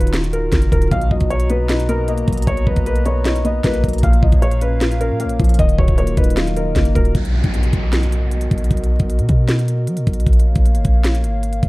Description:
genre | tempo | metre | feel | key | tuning
hip hop, trap | 154 BPM | 4/4 | half-time | unclear | A4 = 436 Hz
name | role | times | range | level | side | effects
felt-muted upright piano | melody | 0.0-7.1 s | Bb4 to F5 | -24 LUFS | equal | low-pass filter
dark analog pad | sustained chords | 0.0-11.7 s | Bb2 to A#5 | -27 LUFS | right 1 dB | chorus
warm 808-style bass | bass | 0.0-11.7 s | Eb1 to F#3 | -18 LUFS | equal | none
trap drum kit | drums | 0.0-11.7 s | hi-hat, kick drum, snare drum | -17 LUFS | equal | none
dark grand piano | accompaniment | 0.9-7.2 s | Bb2 to F4 | -23 LUFS | left 3 dB | low-pass filter
downlifter | sound effects | 7.1-10.3 s | none | -29 LUFS | equal | none
room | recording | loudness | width
little or no reverb | dark, warm production, vinyl crackle | -14 LUFS | side -21 dB against mid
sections
0.0-7.1 A section; 7.1-11.7 B section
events
none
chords
0.0 Ebmadd9; 0.9 Bmaj7; 4.0 Bbm; 5.6 Ebmadd9; 7.1 Bmaj7; 10.3 Bbm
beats
0.14 0.53 | 0.91 1.30 1.69 2.08 | 2.47 2.86 3.25 3.64 | 4.03 4.42 4.81 5.20 | 5.59 5.98 6.37 6.76 | 7.15 7.54 7.93 8.32 | 8.71 9.10 9.49 9.88 | 10.27 10.65 11.04 11.43

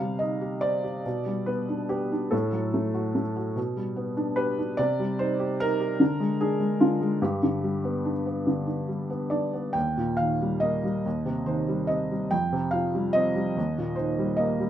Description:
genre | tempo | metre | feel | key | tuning
classical, lyrical solo piano | 48 BPM (dotted quarters) | 6/8 | rubato | C minor | A4 = 440 Hz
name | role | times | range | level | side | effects
felt-muted upright piano | solo | 0.0-14.7 s | Eb2 to G5 | -24 LUFS | equal | none
room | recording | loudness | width
light reverb | minimal, uncompressed stereo recording | -24 LUFS | side -10 dB against mid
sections
0.0-14.7 A section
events
none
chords
0.0 Cm; 1.1 G/B; 2.3 F#m/A; 3.6 G/B; 4.8 Cm; 6.0 Ddim; 7.2 G; 9.8 Eb; 11.0 Cm/Eb; 12.3 Fsus2; 13.6 Eb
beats
1.05 | 2.32 3.56 | 4.79 6.01 | 7.22 8.47 | 9.75 11.05 | 12.32 13.57

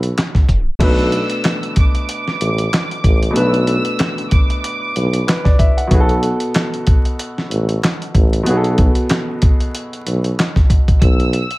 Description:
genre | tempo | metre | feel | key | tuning
hip hop, boom-bap hip-hop | 94 BPM | 4/4 | swing 57% on 16ths | B minor | A4 = 440 Hz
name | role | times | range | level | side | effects
warm baby grand piano | accompaniment | 0.0-11.0 s | B2 to F#5 | -22 LUFS | equal | high-pass filter, low-pass filter
mellow tuba | bass | 0.0-11.4 s | A1 to B1 | -17 LUFS | equal | none
dusty soul sampler-style drum kit | drums | 0.0-11.6 s | crash cymbal, handclaps, hi-hat, kick drum, snare drum | -14 LUFS | equal | none
clear studio violin section | melody | 0.8-5.4, 11.0-11.6 s | D6 to E6 | -24 LUFS | right 2 dB | high-pass filter, low-pass filter, tape echo
room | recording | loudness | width
little or no reverb | vinyl crackle, tape stop | -13 LUFS | side -20 dB against mid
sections
0.8-11.6 A section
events
tape stop 0.5-0.8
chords
0.0 F#m; 0.8 Bm7; 5.9 F#m; 11.0 N.C.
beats
0.17 | 0.80 1.44 2.08 2.72 | 3.36 4.00 4.63 5.27 | 5.91 6.55 7.19 7.83 | 8.46 9.10 9.74 10.38 | 11.02

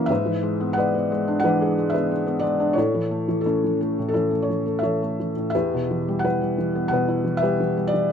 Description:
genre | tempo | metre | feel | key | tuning
classical, lyrical solo piano | 89 BPM | 4/4 | rubato | unclear | A4 = 444 Hz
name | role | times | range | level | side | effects
felt-muted upright piano | solo | 0.0-8.1 s | E2 to F#5 | -20 LUFS | left 1 dB | none
room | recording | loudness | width
moderate studio reverb, RT60 0.7 s | none | -20 LUFS | side -7 dB against mid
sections
0.0-8.1 A section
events
none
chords
0.1 E7/G#; 2.8 A; 5.5 Em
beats
| 0.10 0.77 1.44 2.10 | 2.77 3.44 4.13 4.83 | 5.54 6.24 6.93 7.60

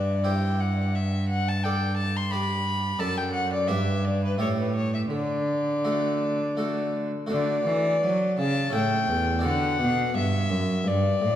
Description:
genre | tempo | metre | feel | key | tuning
classical, baroque-style sonata movement with continuo | 81-89 BPM | 3/4 | rubato | D major | A4 = 440 Hz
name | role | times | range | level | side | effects
rich violin | melody | 0.0-11.4 s | B4 to C6 | -27 LUFS | left 3 dB | none
harpsichord | accompaniment | 0.0-11.4 s | E2 to D5 | -30 LUFS | right 1 dB | none
rich cello | bass | 0.0-11.4 s | E2 to F#3 | -26 LUFS | right 1 dB | none
room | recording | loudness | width
wet recital hall reverb, RT60 1.9 s | heard from further back in the room | -23 LUFS | side -11 dB against mid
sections
0.0-7.3 A section; 7.3-11.4 B section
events
none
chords
0.2 C/G; 0.9 D5/G; 2.3 G; 3.0 D/F#; 3.7 G; 4.4 A9; 5.1 D; 8.7 A7; 9.4 D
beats
0.24 | 0.94 1.64 2.32 | 3.00 3.69 4.39 | 5.11 5.84 6.57 | 7.30 8.02 8.74 | 9.45 10.15 10.86

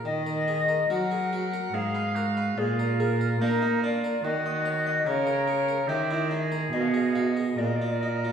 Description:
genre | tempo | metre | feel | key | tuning
classical, baroque-style sonata movement with continuo | 72 BPM | 3/4 | rubato | Eb minor | A4 = 440 Hz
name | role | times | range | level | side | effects
clear oboe | second line | 0.0-8.3 s | Eb4 to Bb4 | -32 LUFS | right 4 dB | none
harpsichord | accompaniment | 0.0-8.3 s | Ab2 to Eb5 | -32 LUFS | equal | none
clear cello | bass | 0.0-8.3 s | Ab2 to Bb3 | -28 LUFS | right 2 dB | none
tenor recorder | melody | 0.1-8.3 s | Ab4 to Gb5 | -28 LUFS | left 3 dB | none
room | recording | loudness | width
wet recital hall reverb, RT60 1.4 s | heard from further back in the room, small room ambience | -24 LUFS | side -7 dB against mid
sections
0.0-8.3 A section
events
none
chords
0.1 Ebm; 1.7 Fdim/Ab; 2.6 Bb7; 4.2 Ebm; 5.1 Eb5/Db; 6.7 Abm/Cb; 7.6 Bb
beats
| 0.05 0.90 1.74 | 2.58 3.41 4.24 | 5.07 5.89 6.73 | 7.59

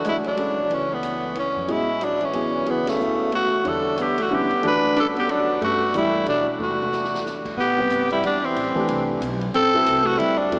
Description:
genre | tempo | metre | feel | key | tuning
modal jazz | 183 BPM | 3/4 | swing 62% on 8ths | A dorian from 7.6 s | A4 = 440 Hz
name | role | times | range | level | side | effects
growling tenor saxophone | melody | 0.0-10.6 s | A3 to B4 | -24 LUFS | equal | none
breathy alto saxophone | second line | 0.0-10.6 s | C#3 to D4 | -28 LUFS | equal | none
warm upright piano | accompaniment | 0.0-10.6 s | C3 to F#5 | -30 LUFS | equal | none
upright bass | bass | 0.0-10.6 s | E#1 to B2 | -39 LUFS | equal | none
swinging big-band drum kit | drums | 0.0-10.6 s | crash cymbal, hi-hat, kick drum, ride cymbal, snare drum, toms | -41 LUFS | equal | none
room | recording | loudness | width
wet cathedral reverb, RT60 6.1 s | in a vast, echoing space, small speaker sound | -22 LUFS | mono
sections
0.0-7.6 A section; 7.6-10.6 B section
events
band accent 2.8; drum fill 6.6-7.2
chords
0.0 F#m11; 3.6 Em11; 7.6 Am11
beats
0.04 0.37 | 0.70 1.02 1.35 | 1.68 2.01 2.33 | 2.66 2.99 3.32 | 3.64 3.97 4.30 | 4.63 4.96 5.28 | 5.61 5.94 6.27 | 6.59 6.92 7.25 | 7.58 7.90 8.23 | 8.56 8.88 9.21 | 9.54 9.86 10.19 | 10.52

